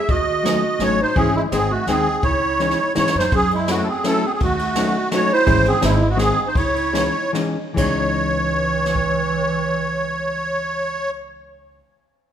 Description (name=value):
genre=musette waltz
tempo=138-170 BPM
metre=3/4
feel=straight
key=C# harmonic minor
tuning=A4 = 438 Hz
part: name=musette accordion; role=melody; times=0.0-11.1 s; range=E4 to E5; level=-20 LUFS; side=equal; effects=none
part: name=breathy clarinet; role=second line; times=0.0-11.1 s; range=E3 to F#4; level=-26 LUFS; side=right 5 dB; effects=none
part: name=upright bass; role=bass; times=0.1-11.8 s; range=G#1 to G#2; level=-26 LUFS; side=right 1 dB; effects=none
part: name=jazz brush drum kit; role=drums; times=0.1-9.0 s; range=crash cymbal, hi-hat, kick drum, ride cymbal, snare drum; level=-24 LUFS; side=equal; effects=none
part: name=hollow-body jazz guitar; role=accompaniment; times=0.4-11.8 s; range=D#3 to E4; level=-24 LUFS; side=left 3 dB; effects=none
room=light reverb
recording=minimal, uncompressed stereo recording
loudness=-17 LUFS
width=side -9 dB against mid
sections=0.0-3.3 A section; 3.3-7.8 B section; 7.8-10.3 C section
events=drum fill 2.6-3.3; slowing down 5.5-7.8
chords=0.1 D#m7b5; 1.2 C#m/G#; 1.5 G#; 2.2 C#madd9; 3.3 F#m7; 4.4 D#m7b5; 5.5 C#m/G#; 5.8 G#; 6.6 C#madd9